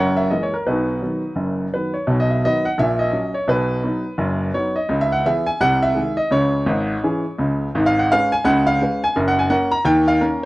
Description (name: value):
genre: jazz, stride piano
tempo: 170 BPM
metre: 4/4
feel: swing 62% on 8ths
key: B major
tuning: A4 = 444 Hz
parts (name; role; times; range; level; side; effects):
- clear grand piano; solo; 0.0-10.4 s; F#1 to A#5; -17 LUFS; equal; none
room: little or no reverb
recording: dry, close 1970s-style studio recording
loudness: -17 LUFS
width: side -19 dB against mid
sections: 0.0-2.1 A section; 2.1-10.5 B section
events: none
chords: 0.0 F#9; 0.7 B; 2.8 F#/A#; 3.5 B; 4.9 C#m7; 5.6 G#/B#; 6.3 C#m; 7.7 C#5/G#; 8.4 C#7; 9.2 F#; 9.9 D#5